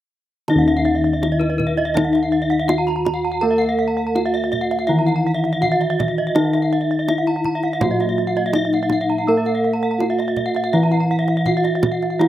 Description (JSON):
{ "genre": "Balinese gamelan", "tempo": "82 BPM", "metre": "4/4", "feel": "straight", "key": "unclear", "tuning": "A4 = 439 Hz", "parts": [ { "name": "gamelan-type bronze metallophone", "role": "melody", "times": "0.5-12.3 s", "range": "Eb4 to Bb4-45c", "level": "-21 LUFS", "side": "left 1 dB", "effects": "slapback echo" }, { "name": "gamelan-type bronze metallophone", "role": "accompaniment", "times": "0.5-12.3 s", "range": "Eb3 to Bb3-45c", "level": "-25 LUFS", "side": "right 1 dB", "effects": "none" }, { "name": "gamelan-type bronze metallophone", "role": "arpeggios", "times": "0.5-12.3 s", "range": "Cb5-40c to Cb6-40c", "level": "-24 LUFS", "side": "left 2 dB", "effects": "slapback echo" }, { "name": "gamelan-type bossed gongs", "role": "bass", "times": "0.5-12.3 s", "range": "Eb2 to Bb4-45c", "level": "-22 LUFS", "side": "left 1 dB", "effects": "none" }, { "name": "kendang", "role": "percussion", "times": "0.5-12.3 s", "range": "none", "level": "-25 LUFS", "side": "right 2 dB", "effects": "none" }, { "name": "gamelan-type bronze metallophone", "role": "arpeggios", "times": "0.6-12.1 s", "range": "Eb5 to Bb5-45c", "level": "-26 LUFS", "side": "right 6 dB", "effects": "slapback echo" } ], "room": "little or no reverb", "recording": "recorded outdoors, with no room sound", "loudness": "-16 LUFS", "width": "side -12 dB against mid", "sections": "0.5-12.3 A section", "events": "none", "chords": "none" }